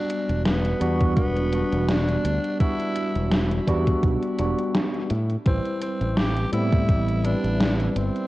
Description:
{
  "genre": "vaporwave",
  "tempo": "84 BPM",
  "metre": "4/4",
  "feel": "swing 55% on 16ths",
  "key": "E minor",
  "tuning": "A4 = 440 Hz",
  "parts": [
    { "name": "raspy tenor saxophone", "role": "melody", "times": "0.0-8.3 s", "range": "B3 to G4", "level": "-30 LUFS", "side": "equal", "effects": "tape echo" },
    { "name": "tine electric piano", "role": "accompaniment", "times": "0.0-8.3 s", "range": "G3 to B4", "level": "-26 LUFS", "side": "equal", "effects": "medium stereo tremolo, lush chorus" },
    { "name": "gated 80s digital drum machine", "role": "drums", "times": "0.1-8.3 s", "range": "hi-hat, snare drum", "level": "-26 LUFS", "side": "equal", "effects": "gated reverb, gated reverb snare, overdrive" },
    { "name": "modern bright fingered electric bass", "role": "bass", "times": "0.3-8.1 s", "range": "E1 to A2", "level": "-25 LUFS", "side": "equal", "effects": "none" },
    { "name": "electronic kick drum", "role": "drums", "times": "1.0-7.0 s", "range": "none", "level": "-22 LUFS", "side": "equal", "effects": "overdrive" }
  ],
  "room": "light reverb, digital ambience",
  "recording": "worn, warbling old tape, cassette tape, warbly pitch drift",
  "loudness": "-20 LUFS",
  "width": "side -17 dB against mid",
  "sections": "0.0-8.3 A section",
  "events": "none",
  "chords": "0.0 Em9; 5.1 Am7"
}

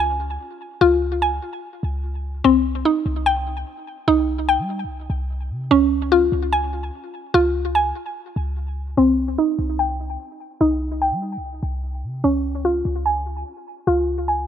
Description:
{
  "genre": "hip hop, trap",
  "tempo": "147 BPM",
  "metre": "4/4",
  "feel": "half-time",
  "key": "C phrygian",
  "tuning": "A4 = 440 Hz",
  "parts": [
    { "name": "mallet-like synth pluck", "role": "arpeggios", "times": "0.0-14.5 s", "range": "C4 to Ab5", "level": "-19 LUFS", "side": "equal", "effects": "chorus, low-pass filter, tape echo" },
    { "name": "clean 808-style bass", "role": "bass", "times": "0.0-14.5 s", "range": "C2 to G3", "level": "-25 LUFS", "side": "equal", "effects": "none" }
  ],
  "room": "light reverb, digital ambience",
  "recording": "rough home demo mix",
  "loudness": "-19 LUFS",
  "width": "side -9 dB against mid",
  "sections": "0.0-9.0 A section; 9.0-14.5 B section",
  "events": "none",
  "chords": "0.0 Db; 2.4 Cm; 5.7 Db; 9.0 Cm; 12.2 Db"
}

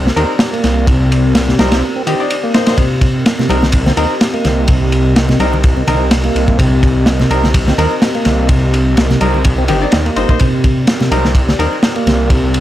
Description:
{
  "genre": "breakbeat, breaks",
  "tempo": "126 BPM",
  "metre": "4/4",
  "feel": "swing 55% on 16ths",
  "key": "C minor",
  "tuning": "A4 = 436 Hz",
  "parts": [
    { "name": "dark analog pad", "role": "sustained chords", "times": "0.0-12.6 s", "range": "C4 to Eb5", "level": "-22 LUFS", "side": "right 1 dB", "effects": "chorus, sidechain pumping" },
    { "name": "detuned saw bass", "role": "bass", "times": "0.0-12.6 s", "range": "G1 to Eb2", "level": "-15 LUFS", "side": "equal", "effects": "none" },
    { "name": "tonewheel organ", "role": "riff", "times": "0.1-12.6 s", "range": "C3 to C4", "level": "-17 LUFS", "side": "equal", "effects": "overdrive, chorus vibrato, slow rotary speaker, tube saturation, vintage 12-bit sampler grit" },
    { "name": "crunchy breakbeat drum kit", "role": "drums", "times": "0.1-12.6 s", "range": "kick drum, ride cymbal, snare drum", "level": "-14 LUFS", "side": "equal", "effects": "none" },
    { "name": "bright baby grand piano", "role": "stabs", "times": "0.2-11.7 s", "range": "C4 to D5", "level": "-19 LUFS", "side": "left 2 dB", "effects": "dub echo" },
    { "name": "congas", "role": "percussion", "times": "3.4-12.2 s", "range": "none", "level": "-22 LUFS", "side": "left 2 dB", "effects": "none" }
  ],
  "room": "studio reverb",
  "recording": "none",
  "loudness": "-10 LUFS",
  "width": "side -13 dB against mid",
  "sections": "0.0-12.6 A section",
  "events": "break 1.8-2.8",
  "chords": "0.0 Cm7"
}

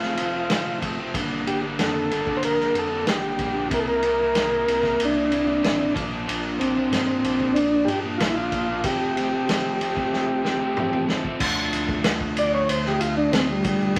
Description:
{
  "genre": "psychedelic rock",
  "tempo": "93 BPM",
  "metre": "4/4",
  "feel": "straight",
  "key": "unclear",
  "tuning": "A4 = 440 Hz",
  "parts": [
    { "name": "combo organ", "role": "melody", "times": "0.0-14.0 s", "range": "F#3 to D5", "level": "-25 LUFS", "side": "equal", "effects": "none" },
    { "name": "overdriven electric guitar", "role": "riff", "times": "0.0-14.0 s", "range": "F2 to E4", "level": "-29 LUFS", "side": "equal", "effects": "none" },
    { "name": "warm sub bass", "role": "bass", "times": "0.0-14.0 s", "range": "D1 to G2", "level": "-42 LUFS", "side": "equal", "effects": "none" },
    { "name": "vintage drum kit", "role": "drums", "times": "0.0-14.0 s", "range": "crash cymbal, kick drum, ride cymbal, snare drum, toms", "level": "-29 LUFS", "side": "equal", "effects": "none" },
    { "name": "tube shaker", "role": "percussion", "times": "11.4-14.0 s", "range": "none", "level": "-50 LUFS", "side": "equal", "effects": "none" }
  ],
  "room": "wet small room ambience, RT60 0.5 s",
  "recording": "vinyl crackle",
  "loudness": "-23 LUFS",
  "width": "mono",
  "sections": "0.0-11.4 A section; 11.4-14.0 B section",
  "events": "drum fill 10.1-11.4; transistor combo organ solo 11.4-14.0",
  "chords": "0.0 F; 1.1 Gm7; 3.7 C7; 6.0 Bb; 8.8 Fadd9; 11.4 Dm"
}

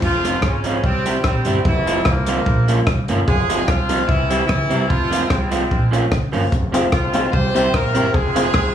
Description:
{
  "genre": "ska",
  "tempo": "148 BPM",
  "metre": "4/4",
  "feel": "straight",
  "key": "F harmonic minor",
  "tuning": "A4 = 438 Hz",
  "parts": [
    { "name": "clear horn section", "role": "melody", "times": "0.0-8.7 s", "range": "Db3 to C5", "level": "-21 LUFS", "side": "equal", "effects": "dub echo" },
    { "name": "upright bass", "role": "bass", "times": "0.0-8.7 s", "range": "F1 to Db2", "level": "-21 LUFS", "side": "equal", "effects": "none" },
    { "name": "compact cocktail drum kit", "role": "drums", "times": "0.0-8.6 s", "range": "crash cymbal, hi-hat, kick drum, rim click", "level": "-21 LUFS", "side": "equal", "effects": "none" },
    { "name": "electric guitar through a small old amp", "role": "accompaniment", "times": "0.2-8.5 s", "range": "F3 to G4", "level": "-22 LUFS", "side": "right 3 dB", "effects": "warbly pitch drift" },
    { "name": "honky-tonk upright piano", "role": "stabs", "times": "6.7-8.5 s", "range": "C4 to C5", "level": "-26 LUFS", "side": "left 3 dB", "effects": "dub echo" }
  ],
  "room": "moderate studio reverb, RT60 0.6 s",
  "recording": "vinyl crackle, studio reverb",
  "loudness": "-15 LUFS",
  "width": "side -9 dB against mid",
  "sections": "0.0-8.7 A section",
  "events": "none",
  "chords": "0.0 Fm; 0.8 C; 1.7 Fm; 2.5 Bbm; 3.3 Fm; 4.1 C; 4.9 Fm; 5.7 Bbm; 6.5 Fm; 7.3 C; 8.1 Fm"
}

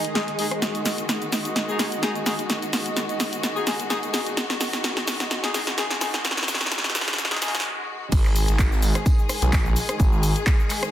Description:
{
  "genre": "bass house",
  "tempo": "128 BPM",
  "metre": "4/4",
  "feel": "swing 54% on 16ths",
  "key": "unclear",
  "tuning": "A4 = 440 Hz",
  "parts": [
    { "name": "rich studio string section", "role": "sustained chords", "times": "0.0-10.9 s", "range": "D#3 to G#4", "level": "-30 LUFS", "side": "left 2 dB", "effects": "sidechain pumping" },
    { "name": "house drum kit", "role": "drums", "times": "0.0-10.9 s", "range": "crash cymbal, handclaps, hi-hat, rim click, shaker, snare drum", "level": "-25 LUFS", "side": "equal", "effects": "small room ambience" },
    { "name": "granular cloud pad", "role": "texture", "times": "0.0-7.7 s", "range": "D#4 to D#5", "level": "-34 LUFS", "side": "right 3 dB", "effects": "built-in reverb, sidechain pumping" },
    { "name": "brilliant horn section", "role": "stabs", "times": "0.2-7.5 s", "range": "G#3 to G#4", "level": "-30 LUFS", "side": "left 3 dB", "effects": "sidechain pumping, low-pass filter, digital delay" },
    { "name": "riser and swell", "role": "sound effects", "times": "3.2-8.1 s", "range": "none", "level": "-37 LUFS", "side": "equal", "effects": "none" },
    { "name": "phased detuned saw bass", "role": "bass", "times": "8.1-10.3 s", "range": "G#1 to B1", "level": "-21 LUFS", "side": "equal", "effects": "phaser, sidechain pumping" },
    { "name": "electronic kick drum", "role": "drums", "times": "8.1-10.6 s", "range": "none", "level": "-20 LUFS", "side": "equal", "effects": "small room ambience" },
    { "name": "open jazz drum kit", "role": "drums", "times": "8.1-10.9 s", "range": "hi-hat, snare drum, tambourine", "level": "-38 LUFS", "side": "equal", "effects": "high-pass filter on hats, low-pass filter on hats, small room ambience, high-pass filter on snare, low-pass filter on snare, high-pass filter on perc, low-pass filter on perc, high-pass filter on room, low-pass filter on room" }
  ],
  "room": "moderate plate reverb, RT60 1.4 s, small room reverb",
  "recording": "dense, heavily limited modern master, high-pass filter",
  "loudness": "-21 LUFS",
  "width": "side -12 dB against mid",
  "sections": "0.0-8.1 A section; 8.1-10.9 B section",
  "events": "build-up 0.0-8.1; drum fill 0.0-7.7; filter sweep 0.0-8.1; swell 7.2-8.1; break 7.7-8.1; drop 8.1-10.9",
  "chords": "0.0 G#5"
}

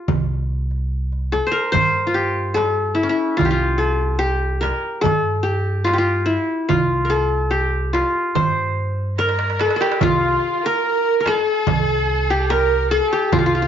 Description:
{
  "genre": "Turkish makam ensemble",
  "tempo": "72 BPM",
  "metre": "4/4",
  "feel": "straight",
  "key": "unclear",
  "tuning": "A4 = 440 Hz",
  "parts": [
    { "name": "qanun", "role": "melody", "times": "0.0-13.7 s", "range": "Db4 to C5", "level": "-19 LUFS", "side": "left 2 dB", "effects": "none" },
    { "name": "upright bass", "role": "bass", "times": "0.1-13.7 s", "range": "C2 to G2", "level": "-23 LUFS", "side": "equal", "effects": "none" },
    { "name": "darbuka", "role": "percussion", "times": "0.1-13.5 s", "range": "none", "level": "-25 LUFS", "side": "right 10 dB", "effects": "none" },
    { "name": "frame drum", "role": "percussion", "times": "0.1-13.5 s", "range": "none", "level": "-26 LUFS", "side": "left 6 dB", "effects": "none" },
    { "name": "dark symphonic violin section", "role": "second line", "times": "9.2-13.7 s", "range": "F4 to Bb4", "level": "-23 LUFS", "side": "right 10 dB", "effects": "none" },
    { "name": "rich kamancheh", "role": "second line", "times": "9.2-13.7 s", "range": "F4 to Bb4", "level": "-25 LUFS", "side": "left 5 dB", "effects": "none" }
  ],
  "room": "wet echo chamber reverb, RT60 1.2 s",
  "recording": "1960s-style stereo with parts hard left and right, nothing above 7.5 kHz",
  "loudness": "-17 LUFS",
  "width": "side -9 dB against mid",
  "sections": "0.0-10.0 A section; 10.0-13.7 B section",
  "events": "drum fill 9.2-10.0",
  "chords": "none"
}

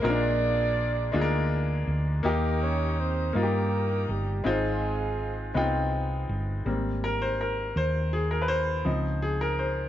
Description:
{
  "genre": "slow gospel",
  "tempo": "54 BPM (dotted quarters)",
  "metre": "6/8",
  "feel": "straight",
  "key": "Ab major",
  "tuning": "A4 = 444 Hz",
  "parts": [
    { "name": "mellow horn section", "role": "melody", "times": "0.0-5.9 s", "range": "G3 to D5", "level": "-30 LUFS", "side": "right 2 dB", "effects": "tape echo" },
    { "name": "bright upright piano", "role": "accompaniment", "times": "0.0-9.9 s", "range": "Ab2 to G5", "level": "-28 LUFS", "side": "left 2 dB", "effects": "none" },
    { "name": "hollow-body short-scale fingered electric bass", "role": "bass", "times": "0.0-9.9 s", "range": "G1 to G2", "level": "-28 LUFS", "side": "equal", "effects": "none" }
  ],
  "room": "light reverb, studio ambience",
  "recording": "nothing above 7.6 kHz",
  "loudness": "-25 LUFS",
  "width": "side -12 dB against mid",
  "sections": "0.0-6.7 A section; 6.7-9.9 B section",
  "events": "upright piano solo 6.7-9.9",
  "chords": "0.0 Bb7; 2.2 Eb; 4.5 Ab6; 6.7 Abmaj9; 8.9 Dbmaj9"
}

